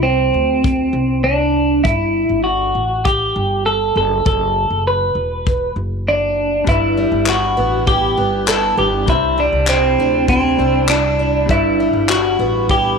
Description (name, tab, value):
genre	acoustic pop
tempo	100 BPM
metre	4/4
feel	straight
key	G major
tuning	A4 = 440 Hz
part	twelve-string electric guitar	melody	0.0-13.0 s	C4 to B4	-15 LUFS	equal	none
part	upright bass	bass	0.0-13.0 s	E1 to D2	-22 LUFS	equal	none
part	soft brush drum kit	drums	0.6-12.8 s	handclaps, kick drum	-19 LUFS	left 2 dB	none
part	bright upright piano	accompaniment	6.6-13.0 s	G3 to C5	-28 LUFS	left 11 dB	none
part	fingerpicked twelve-string acoustic guitar	accompaniment	6.7-13.0 s	G2 to E4	-22 LUFS	right 3 dB	none
room	light reverb, small room ambience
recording	1960s-style stereo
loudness	-14 LUFS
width	side -5 dB against mid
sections	0.0-13.0 A section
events	none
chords	0.0 Csus2; 1.8 Emadd11/G; 4.0 Bm7; 6.7 G6; 9.1 Cadd9; 11.5 G6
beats	0.04 0.64 1.24 | 1.85 2.45 3.05 3.65 | 4.26 4.86 5.46 6.07 | 6.67 7.27 7.88 8.48 | 9.08 9.69 10.29 10.89 | 11.49 12.10 12.70